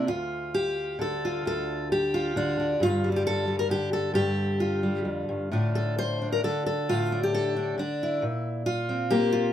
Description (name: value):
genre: folk, solo fingerstyle acoustic guitar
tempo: 133 BPM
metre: 3/4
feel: rubato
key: D minor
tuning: A4 = 440 Hz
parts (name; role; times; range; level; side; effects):
- fingerpicked steel-string acoustic guitar; solo; 0.0-9.5 s; D2 to C5; -24 LUFS; left 1 dB; none
room: light reverb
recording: minimal, uncompressed stereo recording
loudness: -25 LUFS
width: side -10 dB against mid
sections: 0.1-9.5 A section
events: none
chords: 0.1 N.C.; 2.8 G5; 5.5 Dm/A; 8.2 Bbsus2